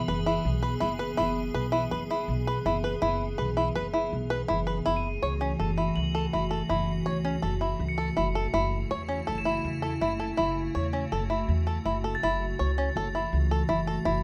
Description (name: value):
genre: contemporary instrumental, chamber music in an uneven meter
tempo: 163 BPM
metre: 5/4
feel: straight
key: F# minor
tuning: A4 = 440 Hz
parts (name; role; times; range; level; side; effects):
- icy glass pad; sustained chords; 0.0-14.2 s; C#3 to G#4; -35 LUFS; equal; chorus, built-in reverb
- crotales; texture; 0.0-0.3, 5.0-12.4 s; A6 to F#7; -42 LUFS; equal; none
- bluegrass banjo; arpeggios; 0.1-14.2 s; C#4 to C#5; -32 LUFS; equal; none
- upright bass; bass; 0.1-14.2 s; F#1 to E2; -33 LUFS; equal; none
room: light reverb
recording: close, detailed microphones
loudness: -28 LUFS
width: mono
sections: 0.0-4.9 A section; 4.9-14.2 B section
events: none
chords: 0.0 E/F#; 4.9 F#m7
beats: 0.08 0.45 0.81 | 1.18 1.55 1.92 2.28 2.65 | 3.02 3.39 3.75 4.12 4.49 | 4.86 5.22 5.59 5.96 6.33 | 6.70 7.06 7.43 7.80 8.17 | 8.54 8.90 9.27 9.64 10.01 | 10.38 10.75 11.11 11.48 11.85 | 12.22 12.59 12.95 13.32 13.69 | 14.06